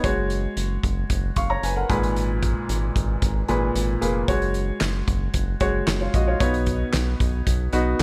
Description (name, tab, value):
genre	piano-driven pop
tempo	113 BPM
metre	4/4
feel	straight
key	F# major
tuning	A4 = 440 Hz
part	bright upright piano	accompaniment	0.0-8.0 s	G#2 to C#6	-27 LUFS	equal	none
part	round analog bass	bass	0.0-8.0 s	E#1 to B1	-27 LUFS	equal	none
part	loose indie drum kit	drums	0.0-8.0 s	handclaps, hi-hat, kick drum, snare drum	-28 LUFS	equal	none
room	studio reverb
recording	none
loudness	-23 LUFS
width	mono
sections	0.0-8.0 A section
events	none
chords	0.0 F#sus2; 1.9 G#madd9; 4.3 F#sus2; 6.4 Badd9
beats	| 0.04 0.57 1.10 1.63 | 2.16 2.69 3.22 3.75 | 4.28 4.81 5.34 5.87 | 6.40 6.93 7.46 8.00